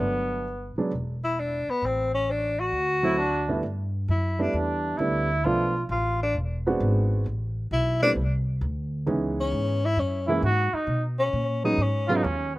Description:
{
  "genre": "jazz, small-group swing and bop",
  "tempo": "132 BPM",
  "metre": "4/4",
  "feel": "swing 68% on 8ths",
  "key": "unclear",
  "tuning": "A4 = 439 Hz",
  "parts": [
    { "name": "mellow trumpet", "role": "second line", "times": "0.0-5.8, 10.3-12.6 s", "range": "B3 to F#4", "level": "-27 LUFS", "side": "right 1 dB", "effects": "slapback echo" },
    { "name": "warm baby grand piano", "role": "accompaniment", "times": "0.0-12.2 s", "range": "G2 to F#4", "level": "-27 LUFS", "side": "right 2 dB", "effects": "none" },
    { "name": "upright bass", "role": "bass", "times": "0.0-12.6 s", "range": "E1 to B2", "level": "-28 LUFS", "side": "equal", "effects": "none" },
    { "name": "clear tenor saxophone", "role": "melody", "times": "1.2-12.1 s", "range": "B3 to F#4", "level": "-25 LUFS", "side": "left 2 dB", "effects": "slapback echo" }
  ],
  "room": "little or no reverb",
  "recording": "recorded outdoors, with no room sound",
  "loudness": "-23 LUFS",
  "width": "side -18 dB against mid",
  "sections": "0.0-3.6 A section; 3.6-12.6 B section",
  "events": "none",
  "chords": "0.0 Gmaj9; 0.9 Bmadd11/E (rootless); 1.8 Amadd11; 2.7 D7; 3.6 G6; 5.4 Bm7b5; 6.4 E7b13; 7.3 Am; 9.1 C#m7; 10.0 F#9; 10.9 B69",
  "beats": "| 0.00 0.46 0.91 1.36 | 1.82 2.27 2.73 3.18 | 3.63 4.09 4.54 4.99 | 5.45 5.90 6.35 6.80 | 7.26 7.71 8.16 8.62 | 9.07 9.52 9.97 10.43 | 10.88 11.33 11.78 12.24"
}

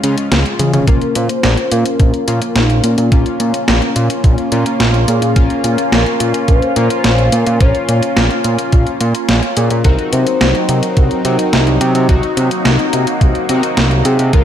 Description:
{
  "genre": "synthwave",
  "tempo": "107 BPM",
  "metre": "4/4",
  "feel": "straight",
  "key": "Bb minor",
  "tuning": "A4 = 439 Hz",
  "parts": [
    { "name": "chorused polysynth", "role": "stabs", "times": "0.0-14.4 s", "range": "Ab3 to Gb4", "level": "-20 LUFS", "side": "left 4 dB", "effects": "ping-pong delay" },
    { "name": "fat analog bass", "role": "bass", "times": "0.0-14.4 s", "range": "Bb1 to Db3", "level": "-14 LUFS", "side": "equal", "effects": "sidechain pumping" },
    { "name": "clean 12-bit digital drum machine", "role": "drums", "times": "0.0-14.4 s", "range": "hi-hat, snare drum, toms", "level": "-17 LUFS", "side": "equal", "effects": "overdrive, small room reverb, gated reverb" },
    { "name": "warm velvety synth lead", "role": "melody", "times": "0.9-14.4 s", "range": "Eb4 to Db5", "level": "-21 LUFS", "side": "left 1 dB", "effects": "chorus, tape echo" },
    { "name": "phased analog pad", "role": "sustained chords", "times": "1.4-14.4 s", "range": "F3 to F4", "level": "-20 LUFS", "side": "right 1 dB", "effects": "phaser, chorus, sidechain pumping" },
    { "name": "electronic kick drum", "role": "drums", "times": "0.9-14.4 s", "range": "none", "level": "-11 LUFS", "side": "equal", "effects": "overdrive, small room reverb" }
  ],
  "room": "light reverb",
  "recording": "none",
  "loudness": "-11 LUFS",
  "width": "side -10 dB against mid",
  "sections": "0.0-14.4 A section",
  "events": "drum fill 0.6",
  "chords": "0.0 Db; 0.9 Bbm; 9.8 Cdim",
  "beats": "0.32 | 0.88 1.44 2.00 2.56 | 3.12 3.68 4.24 4.80 | 5.36 5.92 6.48 7.04 | 7.61 8.16 8.73 9.29 | 9.85 10.41 10.97 11.53 | 12.09 12.65 13.21 13.77 | 14.33"
}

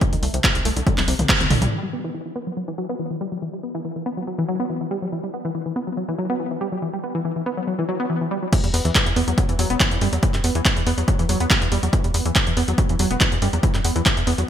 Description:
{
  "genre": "driving peak-time techno",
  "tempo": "141 BPM",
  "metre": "4/4",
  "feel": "straight",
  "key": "E minor",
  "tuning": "A4 = 444 Hz",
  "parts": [
    { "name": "tight sequenced synth", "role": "riff", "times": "0.0-14.4 s", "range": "A#2 to B3", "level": "-24 LUFS", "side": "left 1 dB", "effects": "chorus, tube saturation, sidechain pumping, ping-pong delay" },
    { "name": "electronic kick drum", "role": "drums", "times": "0.0-1.4, 8.5-14.1 s", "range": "none", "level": "-20 LUFS", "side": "equal", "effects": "none" },
    { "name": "punchy analog drum machine", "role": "drums", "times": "0.0-1.7, 8.5-14.5 s", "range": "crash cymbal, handclaps, hi-hat, toms", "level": "-22 LUFS", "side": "equal", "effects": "sidechain pumping on hats, sidechain pumping on toms, sidechain pumping on cymbals, gated reverb" },
    { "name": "tight sequencer bass", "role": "bass", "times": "0.1-1.7, 8.6-14.4 s", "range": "E1 to F#2", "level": "-23 LUFS", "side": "equal", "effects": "sidechain pumping" }
  ],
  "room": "moderate lush hall reverb, RT60 1.8 s",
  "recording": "bright 1980s-style digital production",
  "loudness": "-19 LUFS",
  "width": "side -9 dB against mid",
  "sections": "0.0-1.7 A section; 1.7-8.5 B section; 8.5-14.5 C section",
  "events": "drum fill 0.9-1.7; band accent 1.3; filter sweep on synth arpeggio sound 1.7-8.5; drop 8.5-14.5",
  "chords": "0.0 N.C.; 1.7 E5; 8.5 N.C.",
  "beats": "| 0.01 0.44 0.87 1.29 | 1.72 2.14 2.57 2.99 | 3.42 3.85 4.27 4.70 | 5.12 5.55 5.97 6.40 | 6.82 7.25 7.67 8.10 | 8.53 8.95 9.38 9.80 | 10.23 10.65 11.08 11.51 | 11.93 12.36 12.78 13.21 | 13.63 14.06"
}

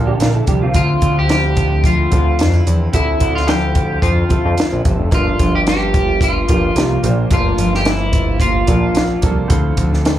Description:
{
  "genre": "indie pop, bedroom pop",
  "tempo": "110 BPM",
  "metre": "4/4",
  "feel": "swing 55% on 16ths",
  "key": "G dorian",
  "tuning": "A4 = 439 Hz",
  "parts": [
    { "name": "clear upright piano", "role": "accompaniment", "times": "0.0-10.2 s", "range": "F3 to E5", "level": "-25 LUFS", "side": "right 5 dB", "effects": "cassette tape, slapback echo" },
    { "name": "picked steel-string acoustic guitar", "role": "accompaniment", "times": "0.0-10.2 s", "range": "G2 to F4", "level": "-22 LUFS", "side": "left 2 dB", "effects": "lush chorus, warbly pitch drift" },
    { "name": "fat analog bass", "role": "bass", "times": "0.0-10.2 s", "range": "F1 to F2", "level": "-17 LUFS", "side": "equal", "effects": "none" },
    { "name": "electric guitar through a small old amp", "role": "second line", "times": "0.1-0.9 s", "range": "C4 to Bb4", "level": "-23 LUFS", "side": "right 5 dB", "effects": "ensemble chorus, slapback echo, tape echo" },
    { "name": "compact cocktail drum kit", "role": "drums", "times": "0.2-10.2 s", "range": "hi-hat, kick drum, snare drum", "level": "-17 LUFS", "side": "equal", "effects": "none" },
    { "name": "electric guitar at the edge of break-up", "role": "melody", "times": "0.8-9.2 s", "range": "E4 to G4", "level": "-19 LUFS", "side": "left 1 dB", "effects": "wide subtle chorus, slapback echo, tape echo" }
  ],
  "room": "light reverb",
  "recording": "live gig heard through the venue's PA, club reverb",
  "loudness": "-13 LUFS",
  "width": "side -12 dB against mid",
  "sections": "0.0-5.1 A section; 5.1-10.2 B section",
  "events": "none",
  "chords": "0.0 Gm7; 0.7 Dm9; 5.1 Gm7; 9.5 Dm9",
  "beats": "0.20 | 0.75 1.29 1.84 2.39 | 2.94 3.48 4.03 4.58 | 5.13 5.67 6.22 6.77 | 7.32 7.86 8.41 8.96 | 9.51 10.06"
}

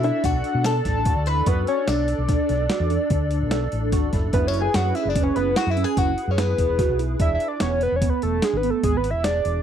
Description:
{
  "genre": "progressive instrumental, band music in an uneven meter",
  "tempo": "147 BPM",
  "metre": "7/4",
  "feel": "straight",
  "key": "B dorian",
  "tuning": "A4 = 440 Hz",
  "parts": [
    { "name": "hollow square lead", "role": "melody", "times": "0.0-9.6 s", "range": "G#4 to B5", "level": "-24 LUFS", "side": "equal", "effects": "chorus" },
    { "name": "open-back banjo", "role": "second line", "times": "0.0-7.0 s", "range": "B3 to B4", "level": "-30 LUFS", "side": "left 8 dB", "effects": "none" },
    { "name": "hollow soft pad", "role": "accompaniment", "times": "0.0-7.2 s", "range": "D4 to D5", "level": "-29 LUFS", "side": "left 3 dB", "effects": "ensemble chorus" },
    { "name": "overdriven tine electric piano", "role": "arpeggios", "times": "0.0-9.6 s", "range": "B3 to A4", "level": "-29 LUFS", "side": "right 14 dB", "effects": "phaser" },
    { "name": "fingered electric bass", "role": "bass", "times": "0.0-9.6 s", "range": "E1 to B2", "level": "-25 LUFS", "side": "equal", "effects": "none" },
    { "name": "boom bap sampler-style drum kit", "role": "drums", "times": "0.0-9.5 s", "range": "hi-hat, kick drum, snare drum", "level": "-25 LUFS", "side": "equal", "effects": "none" }
  ],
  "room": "digital ambience",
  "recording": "dry, close 1970s-style studio recording",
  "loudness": "-19 LUFS",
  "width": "side -9 dB against mid",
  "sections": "0.0-9.6 A section",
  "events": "none",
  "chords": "0.0 Bm7; 4.3 F#7sus4; 7.2 E7",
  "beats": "0.24 0.65 1.06 | 1.47 1.88 2.29 2.70 3.11 3.52 3.92 | 4.33 4.74 5.15 5.56 5.97 6.38 6.79 | 7.20 7.61 8.02 8.43 8.83 9.24"
}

